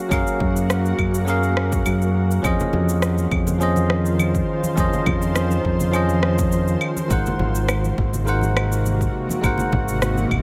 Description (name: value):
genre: sunset chillout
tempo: 103 BPM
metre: 4/4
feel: swing 54% on 16ths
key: unclear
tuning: A4 = 439 Hz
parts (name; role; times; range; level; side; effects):
- bell-like tine electric piano; accompaniment; 0.0-10.4 s; F3 to Gb5; -26 LUFS; equal; tape echo
- shimmering ambient pad; sustained chords; 0.0-10.4 s; C3 to C5; -29 LUFS; equal; chorus, built-in reverb
- modern bright fingered electric bass; bass; 0.1-10.4 s; Ab1 to Gb2; -23 LUFS; equal; none
- electronic claves, shaker and rim click; drums; 0.1-10.4 s; none; -29 LUFS; equal; overdrive, small room reverb
- electronic kick drum; drums; 0.1-10.4 s; none; -27 LUFS; equal; overdrive, small room reverb
- congas; percussion; 2.6-10.3 s; none; -32 LUFS; equal; none
room: light reverb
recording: none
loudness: -20 LUFS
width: mono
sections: 0.0-10.4 A section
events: none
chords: 0.0 Gbmaj7; 2.4 Dbmaj9/F; 7.1 Ab9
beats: | 0.12 0.70 1.28 1.86 | 2.45 3.03 3.61 4.20 | 4.78 5.36 5.94 6.53 | 7.11 7.69 8.27 8.86 | 9.44 10.02